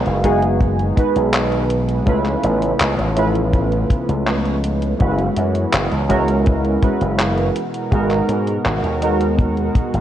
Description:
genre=vaporwave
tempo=82 BPM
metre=4/4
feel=straight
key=B major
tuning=A4 = 437 Hz
part: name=warbly lo-fi synth keys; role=accompaniment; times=0.0-10.0 s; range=G#3 to B4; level=-20 LUFS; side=right 2 dB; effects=analog chorus, vintage 12-bit sampler grit, analog delay
part: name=lush unison pad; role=sustained chords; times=0.0-10.0 s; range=B2 to A#4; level=-24 LUFS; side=equal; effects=chorus
part: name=slap bass with an envelope filter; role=bass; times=0.1-10.0 s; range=F#1 to G#2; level=-20 LUFS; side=equal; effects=tube saturation
part: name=detuned 8-bit digital drum machine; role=drums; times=0.1-10.0 s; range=handclaps, hi-hat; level=-24 LUFS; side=equal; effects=overdrive, vintage 12-bit sampler grit, gated reverb
part: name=kick drum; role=drums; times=0.2-9.9 s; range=none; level=-17 LUFS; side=equal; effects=vintage 12-bit sampler grit
room=light reverb, small room reverb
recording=cassette tape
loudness=-15 LUFS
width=side -11 dB against mid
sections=0.0-10.0 A section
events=none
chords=0.0 B6; 2.1 C#7alt; 5.0 F#9sus4; 7.6 G#m9

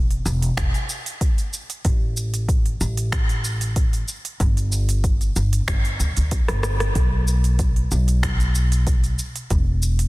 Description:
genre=organic downtempo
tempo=94 BPM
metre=4/4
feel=swing 53% on 16ths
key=unclear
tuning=A4 = 440 Hz
part: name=upright bass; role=bass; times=0.0-10.1 s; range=E1 to D2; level=-21 LUFS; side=equal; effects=sidechain pumping
part: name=organic electronic drum kit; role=drums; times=0.1-10.1 s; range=cabasa, finger snaps, hi-hat, rim click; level=-28 LUFS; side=right 1 dB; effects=soft clipping on snare
part: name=electronic kick drum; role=drums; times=0.6-9.6 s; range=none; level=-21 LUFS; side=equal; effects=none
room=little or no reverb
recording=dense, heavily limited modern master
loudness=-19 LUFS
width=side -20 dB against mid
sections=0.0-10.1 A section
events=drum fill 6.5-7.0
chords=none

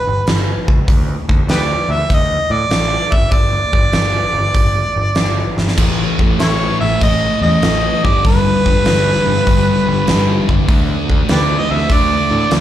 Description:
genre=blues rock power trio and southern rock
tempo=98 BPM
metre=4/4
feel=swing 68% on 8ths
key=unclear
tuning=A4 = 440 Hz
part: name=clear harmonica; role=melody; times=0.0-12.5 s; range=E4 to E5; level=-17 LUFS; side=right 1 dB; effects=overdrive, slapback echo
part: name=growling picked electric bass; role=bass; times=0.1-12.6 s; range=G1 to A2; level=-19 LUFS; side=equal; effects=overdrive
part: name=huge arena drum kit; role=drums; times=0.3-12.6 s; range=crash cymbal, hi-hat, kick drum, snare drum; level=-16 LUFS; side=equal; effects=none
part: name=thick fuzz guitar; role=riff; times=5.8-12.6 s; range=G2 to D4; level=-17 LUFS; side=left 1 dB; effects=distortion
room=small room ambience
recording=live gig heard through the venue's PA, club reverb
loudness=-12 LUFS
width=side -12 dB against mid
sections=0.0-12.6 A section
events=drum fill 5.5-5.8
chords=0.0 G; 0.9 D5; 3.0 G5; 5.8 A5; 7.9 G; 10.7 D5

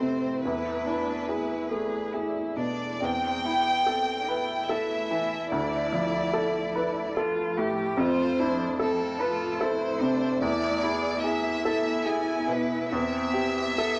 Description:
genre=neoclassical piano and strings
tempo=72 BPM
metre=3/4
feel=rubato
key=A minor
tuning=A4 = 439 Hz
part: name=rich chamber violin section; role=melody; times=0.0-14.0 s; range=A4 to G#5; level=-32 LUFS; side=equal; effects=none
part: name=rich cello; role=second line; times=0.0-14.0 s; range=B3 to G#4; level=-34 LUFS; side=equal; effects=none
part: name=bright upright piano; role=accompaniment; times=0.0-14.0 s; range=D2 to B4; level=-31 LUFS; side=equal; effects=none
part: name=granular cloud pad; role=sustained chords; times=0.0-14.0 s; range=F3 to G#5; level=-41 LUFS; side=equal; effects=built-in reverb
room=moderate studio reverb, RT60 0.7 s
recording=none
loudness=-27 LUFS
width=mono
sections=0.0-14.0 A section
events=none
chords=0.4 E7; 3.0 A5/E; 5.5 Dm; 8.0 Fmaj7; 10.4 E7; 12.9 Am7/E

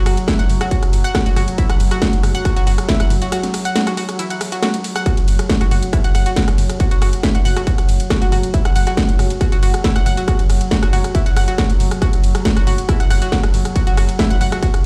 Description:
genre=driving peak-time techno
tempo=138 BPM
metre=4/4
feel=straight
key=unclear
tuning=A4 = 441 Hz
part: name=analog pluck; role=riff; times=0.0-14.7 s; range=E4 to F#5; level=-26 LUFS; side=equal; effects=chorus, sidechain pumping, delay
part: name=saturated sub bass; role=bass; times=0.0-14.8 s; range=F#1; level=-21 LUFS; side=equal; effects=sidechain pumping, low-pass filter
part: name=analog drone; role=drone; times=0.0-14.9 s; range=F#3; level=-29 LUFS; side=equal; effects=chorus, sidechain pumping
part: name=techno drum kit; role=drums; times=0.1-14.8 s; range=hi-hat, ride cymbal, rim click, snare drum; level=-25 LUFS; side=equal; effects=sidechain pumping on hats, sidechain pumping on cymbals
part: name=electronic kick drum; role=drums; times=0.3-14.7 s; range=none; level=-19 LUFS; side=equal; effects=distortion
room=light reverb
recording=played on a big sound system in a bare room, large studio reverb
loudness=-16 LUFS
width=mono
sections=0.0-14.9 A section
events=break 3.3-5.1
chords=0.0 F#5

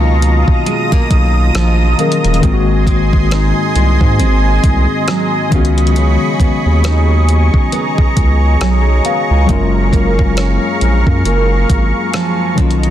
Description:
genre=contemporary R&B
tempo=68 BPM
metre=4/4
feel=swing 58% on 16ths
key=F# major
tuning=A4 = 440 Hz
part: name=bright tine electric piano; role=accompaniment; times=0.0-12.9 s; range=D#3 to G#5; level=-18 LUFS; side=left 7 dB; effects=medium tremolo
part: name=lush unison pad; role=sustained chords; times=0.0-12.9 s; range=D#4 to D#6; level=-18 LUFS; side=equal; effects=chorus
part: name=nylon-string guitar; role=arpeggios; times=0.0-12.9 s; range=F#2 to D#4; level=-20 LUFS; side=right 5 dB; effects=ping-pong delay
part: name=saturated sub bass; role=bass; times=0.0-12.9 s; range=D#1 to G#2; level=-13 LUFS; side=equal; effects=none
part: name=clean 12-bit digital drum machine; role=drums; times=0.2-12.9 s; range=hi-hat, kick drum, rim click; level=-15 LUFS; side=equal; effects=soft clipping on snare
room=little or no reverb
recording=dense, heavily limited modern master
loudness=-10 LUFS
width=side -12 dB against mid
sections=0.0-12.9 A section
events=tine electric piano fill 8.2-9.5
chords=0.0 Bmaj9#11; 2.4 G#7; 5.5 C#9sus4; 9.5 F#maj7

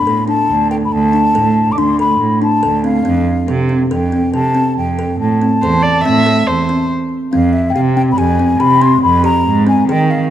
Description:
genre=contemporary instrumental, chamber music in an uneven meter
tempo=141 BPM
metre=5/4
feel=straight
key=unclear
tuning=A4 = 440 Hz
part: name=mellow hollow concert flute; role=melody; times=0.0-10.3 s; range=E5 to D6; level=-16 LUFS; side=left 3 dB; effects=none
part: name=kalimba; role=arpeggios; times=0.1-10.2 s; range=C4 to A4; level=-16 LUFS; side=left 1 dB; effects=none
part: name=warm cello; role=bass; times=0.1-10.2 s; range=D2 to D#3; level=-16 LUFS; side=right 3 dB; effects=none
part: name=dark viola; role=second line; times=5.6-6.9 s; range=C5 to E5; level=-16 LUFS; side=right 1 dB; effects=none
part: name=celesta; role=texture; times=7.7-8.1 s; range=G5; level=-23 LUFS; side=left 9 dB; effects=none
room=moderate concert hall reverb, RT60 1.9 s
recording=none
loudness=-11 LUFS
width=side -11 dB against mid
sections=0.0-7.3 A section; 7.3-10.3 B section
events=stop 6.9-7.3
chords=0.0 D5; 3.1 F; 5.2 Am; 7.3 Fmadd9; 9.5 G#

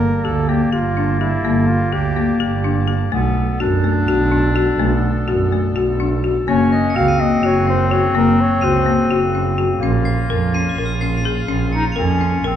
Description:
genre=contemporary instrumental, chamber music in an uneven meter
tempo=251 BPM (eighths)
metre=7/8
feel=straight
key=unclear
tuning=A4 = 440 Hz
part: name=warm flugelhorn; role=melody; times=0.0-2.9, 6.5-9.2 s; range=Fb4 to F5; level=-23 LUFS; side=right 3 dB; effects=none
part: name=warm clarinet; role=second line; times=0.0-12.6 s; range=Bb3 to Eb4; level=-22 LUFS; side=left 3 dB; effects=none
part: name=clear woodwind section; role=sustained chords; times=0.0-12.6 s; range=Db3 to A5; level=-29 LUFS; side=left 2 dB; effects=none
part: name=folk marimba with hard mallets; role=arpeggios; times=0.0-12.6 s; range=A3 to Bb4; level=-19 LUFS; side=left 5 dB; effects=none
part: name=clear double bass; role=bass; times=0.3-12.6 s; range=Gb1 to F#2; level=-19 LUFS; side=right 4 dB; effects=none
part: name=crotales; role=texture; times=6.7-12.5 s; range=Bb6 to Bb7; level=-30 LUFS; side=equal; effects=none
room=wet recital hall reverb, RT60 1.7 s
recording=minimal, uncompressed stereo recording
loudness=-15 LUFS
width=side -10 dB against mid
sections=0.0-12.6 A section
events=none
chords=0.0 Gmadd9; 3.1 Bm7; 6.5 Gb; 9.8 Bbm

